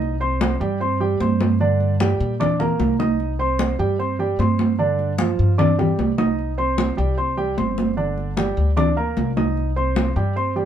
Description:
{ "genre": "latin, Cuban son and guajira", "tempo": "151 BPM", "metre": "4/4", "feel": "straight", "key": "unclear", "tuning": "A4 = 440 Hz", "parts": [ { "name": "dark grand piano", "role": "arpeggios", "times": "0.0-10.7 s", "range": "D3 to Eb6", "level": "-22 LUFS", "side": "right 3 dB", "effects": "none" }, { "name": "upright bass", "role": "bass", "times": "0.0-10.7 s", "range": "G1 to Bb2", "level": "-22 LUFS", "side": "left 1 dB", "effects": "none" }, { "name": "congas", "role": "percussion", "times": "0.0-10.7 s", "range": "none", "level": "-22 LUFS", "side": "equal", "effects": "none" } ], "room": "moderate studio reverb, RT60 0.5 s", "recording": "minimal, uncompressed stereo recording", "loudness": "-18 LUFS", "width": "side -9 dB against mid", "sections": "0.0-10.7 A section", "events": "none", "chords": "0.0 Cm; 1.6 Gm; 3.2 Cm; 4.8 G5; 6.4 Cm; 8.0 Gm; 9.6 Cm" }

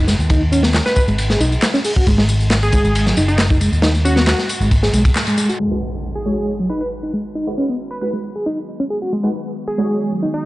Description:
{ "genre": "breakbeat, breaks", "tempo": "136 BPM", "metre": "4/4", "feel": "straight", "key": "G# minor", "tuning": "A4 = 440 Hz", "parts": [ { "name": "reed electric piano", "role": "riff", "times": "0.0-10.3 s", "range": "F#3 to G#4", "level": "-20 LUFS", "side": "equal", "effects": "fast tremolo, tube saturation, low-pass filter, tape echo" }, { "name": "picked electric bass", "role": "bass", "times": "0.0-5.1 s", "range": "F#1 to D#2", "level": "-17 LUFS", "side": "equal", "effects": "none" }, { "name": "crunchy breakbeat drum kit", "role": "drums", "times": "0.1-5.5 s", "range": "hi-hat, kick drum, ride cymbal, snare drum", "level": "-18 LUFS", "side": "equal", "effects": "none" }, { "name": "electronic tambourine and handclaps", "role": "drums", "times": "0.1-5.6 s", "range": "none", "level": "-26 LUFS", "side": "left 1 dB", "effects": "none" }, { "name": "plucky unison lead", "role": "melody", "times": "0.9-10.5 s", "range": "D#4 to B4", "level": "-24 LUFS", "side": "equal", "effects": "telephone sound, tape echo" }, { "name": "warbly tape-like pad", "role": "sustained chords", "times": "6.8-10.5 s", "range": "D#3 to F#4", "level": "-30 LUFS", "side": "equal", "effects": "chorus, built-in reverb, sidechain pumping" }, { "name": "impact", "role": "sound effects", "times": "5.6-7.4 s", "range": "none", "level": "-29 LUFS", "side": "equal", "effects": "none" }, { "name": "orchestra-hit-like synth stab", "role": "stabs", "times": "5.7-10.0 s", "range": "G#3 to C#5", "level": "-27 LUFS", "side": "right 2 dB", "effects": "built-in reverb, phaser, tape echo" } ], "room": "light reverb", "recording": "dry, gritty hardware recording, transformer saturation, cassette tape, low-pass filter, nothing above 10.6 kHz", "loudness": "-15 LUFS", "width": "side -18 dB against mid", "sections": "0.0-5.6 A section; 5.6-10.5 B section", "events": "band accent 5.2; impact 5.6-7.4; filter sweep on ambient pad 5.6-10.5; filter sweep 5.6-10.5", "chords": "0.0 G#7(no3); 5.6 G#m7" }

